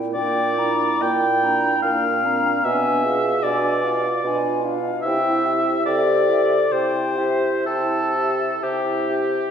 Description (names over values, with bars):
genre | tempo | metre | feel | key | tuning
classical, slow romantic movement for wind quintet | 60-76 BPM | 3/4 | rubato | unclear | A4 = 440 Hz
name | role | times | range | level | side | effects
dark clarinet | accompaniment | 0.0-9.5 s | B3 to A4 | -27 LUFS | right 5 dB | none
mellow French horn | accompaniment | 0.0-9.5 s | Bb3 to G4 | -31 LUFS | equal | none
mellow bassoon | bass | 0.0-9.4 s | Bb2 to C3 | -24 LUFS | right 2 dB | none
mellow silver concert flute | melody | 0.1-9.5 s | E5 to Bb5 | -27 LUFS | left 3 dB | none
clear oboe | second line | 0.1-9.5 s | G4 to G5 | -21 LUFS | left 1 dB | none
room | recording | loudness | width
wet recital hall reverb, RT60 1.8 s | recorded in a church or concert hall | -18 LUFS | side -8 dB against mid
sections
0.0-9.5 A section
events
none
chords
0.1 Gm/Bb; 2.6 Bdim7; 5.0 C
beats
| 0.14 1.01 1.83 | 2.63 3.44 4.24 | 5.04 5.86 6.72 | 7.67 8.63